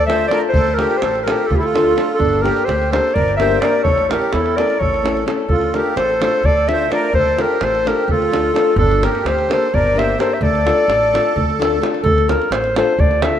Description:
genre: balkan folk, Balkan wedding band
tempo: 256 BPM (eighths)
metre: 7/8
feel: straight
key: D minor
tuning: A4 = 439 Hz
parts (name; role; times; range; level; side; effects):
- clear clarinet; melody; 0.0-13.4 s; G4 to E5; -17 LUFS; equal; none
- accordion; second line; 0.0-11.8 s; D4 to C5; -23 LUFS; right 4 dB; light tremolo tuning
- upright bass; bass; 0.0-13.4 s; G1 to E2; -22 LUFS; equal; none
- nylon-string guitar; accompaniment; 0.1-13.4 s; A3 to Bb4; -22 LUFS; left 6 dB; none
- davul; percussion; 0.1-13.3 s; none; -23 LUFS; right 2 dB; none
room: moderate lush hall reverb, RT60 2.7 s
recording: rough home demo mix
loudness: -14 LUFS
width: side -9 dB against mid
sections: 0.0-12.0 A section; 12.0-13.4 A section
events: none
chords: 0.0 Dm; 2.2 Gm; 3.8 A; 5.5 Dm; 8.8 Gm; 10.4 Dm

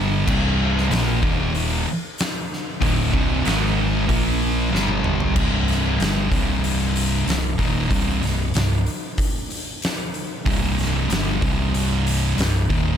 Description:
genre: stoner and doom metal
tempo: 94 BPM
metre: 4/4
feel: straight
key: C minor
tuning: A4 = 441 Hz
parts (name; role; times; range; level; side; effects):
- sludgy distorted guitar; riff; 0.0-5.4 s; C2 to Bb3; -26 LUFS; equal; overdrive
- thick fuzz guitar; riff; 0.0-13.0 s; C2 to Bb3; -24 LUFS; left 7 dB; distortion
- thick fuzz guitar; riff; 0.0-13.0 s; C2 to Bb3; -25 LUFS; right 10 dB; distortion
- overdriven fingered electric bass; bass; 0.0-13.0 s; C1 to Bb1; -25 LUFS; equal; none
- oversized low-tuned drum kit; drums; 0.3-12.9 s; crash cymbal, hi-hat, kick drum, snare drum, toms; -24 LUFS; equal; none
room: little or no reverb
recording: none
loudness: -19 LUFS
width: side -8 dB against mid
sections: 0.0-5.4 A section; 5.4-13.0 B section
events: drum fill 4.7-5.4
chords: 0.3 C5; 1.2 Eb5; 2.8 C5; 3.4 Ab5; 4.1 Bb5; 4.7 G5; 5.4 Cm

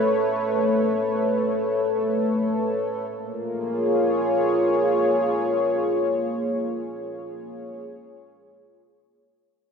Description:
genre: ambient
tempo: free time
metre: none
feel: none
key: unclear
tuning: A4 = 440 Hz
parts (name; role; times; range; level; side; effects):
- warm analog pad; sustained chords; 0.0-7.8 s; A3 to C#5; -21 LUFS; equal; chorus
room: wet lush hall reverb, RT60 2.8 s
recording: none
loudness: -21 LUFS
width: side -6 dB against mid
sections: 0.0-3.1 A section; 3.1-7.0 B section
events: none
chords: 0.0 Aadd9; 3.1 Bbm7

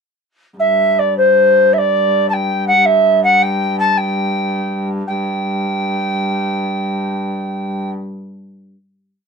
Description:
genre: medieval dance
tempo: 104-120 BPM (dotted quarters)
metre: 6/8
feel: straight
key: unclear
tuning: A4 = 438 Hz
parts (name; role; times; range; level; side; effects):
- reedy alto recorder; melody; 0.6-7.9 s; C5 to A5; -14 LUFS; equal; none
- warm hurdy-gurdy; drone; 0.6-7.9 s; G2; -22 LUFS; left 1 dB; stereo widening
room: light reverb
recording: dry, close 1970s-style studio recording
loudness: -13 LUFS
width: side -5 dB against mid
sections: 0.6-5.1 A section; 5.1-7.1 final note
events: speeding up 0.6-7.1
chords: none

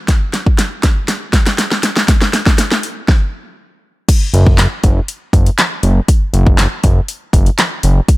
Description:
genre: dance-pop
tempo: 120 BPM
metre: 4/4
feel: straight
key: unclear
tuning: A4 = 439 Hz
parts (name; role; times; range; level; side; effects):
- pop drum kit; drums; 0.1-8.2 s; crash cymbal, handclaps, hi-hat, kick drum, snare drum; -12 LUFS; equal; none
- fat analog bass; bass; 4.3-8.0 s; F#1; -11 LUFS; equal; sidechain pumping
room: digital ambience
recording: none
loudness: -11 LUFS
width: side -19 dB against mid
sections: 0.0-4.1 A section; 4.1-8.2 B section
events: build-up 0.0-4.1; drum fill 0.0-3.1; stop 3.1-4.1; drop 4.1-8.2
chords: none

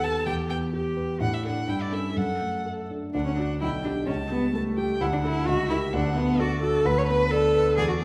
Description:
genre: quick classical-period movement for piano trio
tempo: 129 BPM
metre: 2/4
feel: straight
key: D major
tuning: A4 = 441 Hz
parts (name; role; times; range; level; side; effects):
- rich violin; melody; 0.0-8.0 s; B4 to A5; -36 LUFS; equal; none
- warm cello; second line; 0.0-8.0 s; A3 to C#5; -29 LUFS; equal; none
- warm concert grand piano; accompaniment; 0.0-8.0 s; B1 to D5; -29 LUFS; equal; none
room: wet recital hall reverb, RT60 1.6 s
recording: none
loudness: -26 LUFS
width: mono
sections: 0.0-3.1 A section; 3.1-8.0 A section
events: none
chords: 0.3 Em; 1.2 D/A; 1.7 A7/G; 2.2 D/F#; 3.1 D; 3.6 G/B; 4.1 A7/C#; 5.0 D; 5.5 C#dim7; 5.9 D; 6.9 Bm7/D

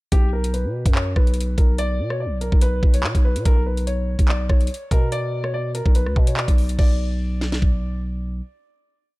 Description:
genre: hip hop, drill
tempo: 144 BPM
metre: 4/4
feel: half-time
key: B harmonic minor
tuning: A4 = 440 Hz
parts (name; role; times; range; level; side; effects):
- dark concert grand piano; melody; 0.1-8.0 s; G4 to D5; -28 LUFS; equal; low-pass filter, ping-pong delay
- growling 808-style bass; bass; 0.1-8.4 s; B1 to B2; -23 LUFS; equal; none
- drill drum kit; drums; 0.1-7.7 s; crash cymbal, handclaps, hi-hat, kick drum, rim click, snare drum; -18 LUFS; equal; none
room: digital ambience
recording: none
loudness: -18 LUFS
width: side -21 dB against mid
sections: 0.1-6.8 hook; 6.8-9.2 final chord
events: none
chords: 0.1 F#sus4/B; 1.8 Bsus2; 5.1 Bm

